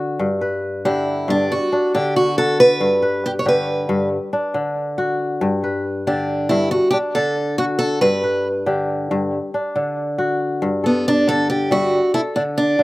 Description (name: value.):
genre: west african traditional, West African string and xylophone music.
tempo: 92 BPM (dotted quarters).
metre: 12/8.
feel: straight.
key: G major.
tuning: A4 = 439 Hz.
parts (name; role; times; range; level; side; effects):
kora; arpeggios; 0.0-12.8 s; G2 to E5; -20 LUFS; left 1 dB; slapback echo.
picked steel-string acoustic guitar; melody; 0.9-12.8 s; B3 to C#5; -17 LUFS; right 1 dB; slapback echo.
room: little or no reverb.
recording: recorded outdoors, with no room sound.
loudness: -17 LUFS.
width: side -19 dB against mid.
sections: 0.0-10.6 A section; 10.6-12.8 B section.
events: none.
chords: 0.2 G; 1.5 D; 2.8 G; 4.1 D; 5.4 G; 6.7 D; 8.0 G; 9.3 D; 10.6 G5; 11.9 D5.